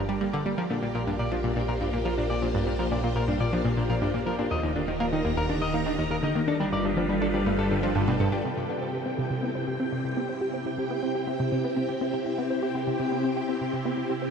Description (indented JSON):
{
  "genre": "ambient, sequencer-driven space music",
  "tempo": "122 BPM",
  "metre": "4/4",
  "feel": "straight",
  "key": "unclear",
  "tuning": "A4 = 442 Hz",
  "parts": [
    { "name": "phased string machine", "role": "sustained chords", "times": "0.0-14.3 s", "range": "C3 to Bb5", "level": "-29 LUFS", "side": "equal", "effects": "ensemble chorus, phaser, shimmer reverb" },
    { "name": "analog pluck", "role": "riff", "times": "0.0-14.3 s", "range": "Eb2 to G4", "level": "-28 LUFS", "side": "equal", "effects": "chorus, phaser, ping-pong delay" },
    { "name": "warm sub bass", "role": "bass", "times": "0.0-8.4 s", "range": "Eb1 to Bb1", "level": "-36 LUFS", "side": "equal", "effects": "none" },
    { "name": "electric guitar at the edge of break-up", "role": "arpeggios", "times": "0.1-8.4 s", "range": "D3 to Eb5", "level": "-33 LUFS", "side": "left 1 dB", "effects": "auto-pan, ping-pong delay, shimmer reverb" }
  ],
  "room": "wet huge ambient reverb, RT60 8.9 s",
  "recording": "none",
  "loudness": "-25 LUFS",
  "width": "side -6 dB against mid",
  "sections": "0.0-8.4 A section; 8.4-14.3 B section",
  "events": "fade-in on string machine 0.0-8.4; filter sweep on synth arpeggio sound 8.4-14.3",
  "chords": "0.0 Gm; 0.6 Bb6; 4.5 Eb; 6.5 G7; 8.4 C"
}